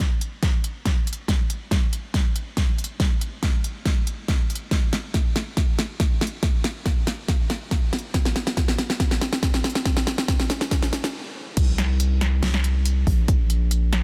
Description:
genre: future bass.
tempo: 140 BPM.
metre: 4/4.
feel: half-time.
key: unclear.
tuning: A4 = 440 Hz.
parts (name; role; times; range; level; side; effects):
electronic kick drum; drums; 0.0-13.4 s; none; -24 LUFS; equal; none.
pop drum kit; drums; 0.0-14.0 s; crash cymbal, hi-hat, snare drum; -28 LUFS; equal; none.
long sustained 808-style bass; bass; 11.6-14.0 s; Bb1 to C2; -23 LUFS; equal; sidechain pumping.
room: digital ambience.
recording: dense, heavily limited modern master.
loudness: -23 LUFS.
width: mono.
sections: 0.0-11.6 A section; 11.6-14.0 B section.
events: build-up 0.0-11.6; drum fill 0.0-11.1; stop 11.1-11.6; drop 11.6-14.0.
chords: none.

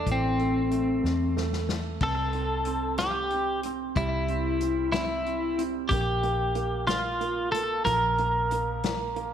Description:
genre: six-eight pop ballad.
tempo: 62 BPM (dotted quarters).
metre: 6/8.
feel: straight.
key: unclear.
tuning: A4 = 442 Hz.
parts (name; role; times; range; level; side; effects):
twelve-string electric guitar; melody; 0.0-9.3 s; C4 to Bb4; -27 LUFS; left 1 dB; slapback echo.
clear upright piano; accompaniment; 0.0-9.3 s; E3 to C4; -34 LUFS; right 12 dB; none.
vintage muted fingered electric bass; bass; 0.0-9.3 s; A1 to E2; -32 LUFS; equal; none.
unplugged drum kit; drums; 0.1-9.3 s; crash cymbal, hi-hat, kick drum, snare drum; -34 LUFS; left 4 dB; none.
room: moderate echo chamber reverb, RT60 1.7 s, studio reverb.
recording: 1960s-style stereo.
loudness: -25 LUFS.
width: side -9 dB against mid.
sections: 0.0-2.0 A section; 2.0-9.3 B section.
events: drum fill 1.0-2.0.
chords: 0.0 Am; 2.0 C; 5.9 Bb5.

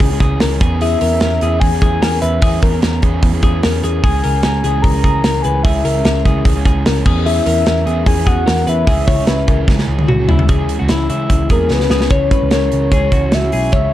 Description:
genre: jangly indie pop.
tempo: 149 BPM.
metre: 4/4.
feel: straight.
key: C# dorian.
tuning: A4 = 439 Hz.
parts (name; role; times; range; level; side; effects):
crunchy overdriven guitar; accompaniment; 0.0-13.9 s; C#3 to G#4; -22 LUFS; right 4 dB; none.
twelve-string electric guitar; arpeggios; 0.0-13.9 s; E4 to C#5; -22 LUFS; left 6 dB; spring reverb.
vintage muted picked electric bass; bass; 0.0-13.9 s; B1 to C#3; -17 LUFS; equal; none.
modern studio drum kit; drums; 0.0-13.8 s; crash cymbal, hi-hat, kick drum, snare drum, toms; -15 LUFS; equal; none.
soft octave-layered synth lead; melody; 0.8-13.9 s; A#4 to A#5; -19 LUFS; left 2 dB; chorus.
room: light reverb.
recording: dark, warm production.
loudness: -12 LUFS.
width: side -13 dB against mid.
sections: 0.0-10.5 A section; 10.5-12.1 B section; 12.1-13.9 C section.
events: drum fill 9.7-10.5, 11.7-12.1.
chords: 0.0 C#m; 0.6 E6; 4.0 C#m; 7.1 E6; 8.9 C#m.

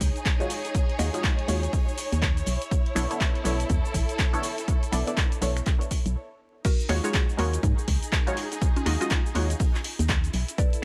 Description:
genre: deep house.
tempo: 122 BPM.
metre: 4/4.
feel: swing 60% on 16ths.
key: unclear.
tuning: A4 = 440 Hz.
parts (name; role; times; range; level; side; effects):
filtered dub chord stab; stabs; 0.0-10.8 s; Ab3 to Eb5; -34 LUFS; equal; phaser, cassette tape, sidechain pumping, digital delay.
organ-like FM bass; bass; 0.0-10.4 s; A1 to Ab2; -28 LUFS; equal; none.
deep reggae drum kit; drums; 0.0-10.7 s; hi-hat, snare drum; -45 LUFS; equal; none.
electronic kick drum; drums; 0.0-10.7 s; none; -27 LUFS; equal; none.
punchy analog drum machine; drums; 0.0-10.8 s; cabasa, crash cymbal, finger snaps, handclaps, hi-hat; -34 LUFS; equal; none.
warm symphonic string section; texture; 0.0-10.8 s; Eb4 to Db5; -38 LUFS; equal; sidechain pumping.
mallet-like synth pluck; melody; 6.6-10.8 s; Db4 to D5; -38 LUFS; equal; chorus, phaser, tape echo.
room: little or no reverb.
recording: vinyl crackle.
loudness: -26 LUFS.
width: mono.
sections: 0.0-6.6 A section; 6.6-10.8 B section.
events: stop 6.2-6.6; drop 6.6-10.8.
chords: 0.0 Ebm11; 2.5 Bm11; 6.6 Ebm11; 10.3 Bm11.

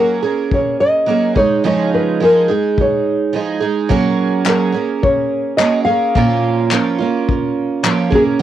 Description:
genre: acoustic pop.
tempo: 106 BPM.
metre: 4/4.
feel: straight.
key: F# major.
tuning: A4 = 441 Hz.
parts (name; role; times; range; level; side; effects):
nylon-string guitar; melody; 0.0-8.2 s; G#4 to E#5; -15 LUFS; left 1 dB; none.
picked twelve-string acoustic guitar; accompaniment; 0.0-8.4 s; A#2 to G#4; -16 LUFS; right 5 dB; cassette tape.
soft brush drum kit; drums; 0.5-8.3 s; handclaps, kick drum; -20 LUFS; left 3 dB; cassette tape.
group handclap; percussion; 4.5-8.0 s; none; -22 LUFS; left 12 dB; none.
room: moderate booth ambience, RT60 0.3 s.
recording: home recording on cassette.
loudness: -13 LUFS.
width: side -11 dB against mid.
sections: 0.0-8.4 A section.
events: none.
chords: 0.0 F#add9; 1.4 C#add9; 3.9 F#add9; 6.2 A#m.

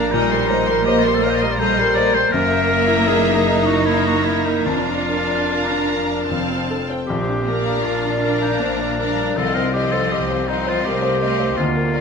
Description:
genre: classical, romantic movement for piano and orchestra.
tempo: 74-83 BPM.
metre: 3/4.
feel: rubato.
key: Bb major.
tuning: A4 = 440 Hz.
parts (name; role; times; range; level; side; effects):
clear grand piano; melody; 0.0-12.0 s; Bb1 to Eb5; -21 LUFS; left 2 dB; none.
warm symphonic violin section; melody; 0.0-12.0 s; F5 to C6; -28 LUFS; left 6 dB; none.
bright clarinet; second line; 0.0-12.0 s; D4 to Eb5; -23 LUFS; left 2 dB; none.
warm symphonic violin section; second line; 0.0-12.0 s; C5 to F5; -27 LUFS; left 3 dB; none.
bright symphonic viola section; accompaniment; 0.0-12.0 s; G3 to D4; -25 LUFS; right 2 dB; none.
rich symphonic cello section; bass; 0.0-12.0 s; F3 to Eb4; -25 LUFS; right 4 dB; none.
rich symphonic double bass section; bass; 0.0-12.0 s; F1 to D2; -27 LUFS; right 4 dB; none.
room: moderate scoring stage reverb, RT60 1.7 s.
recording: none.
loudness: -16 LUFS.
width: side -5 dB against mid.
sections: 0.0-12.0 A section.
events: none.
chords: 0.1 Cm7/Bb; 2.3 Gb7; 4.7 Bb/F; 6.3 F; 7.1 Bb; 9.4 F7/C.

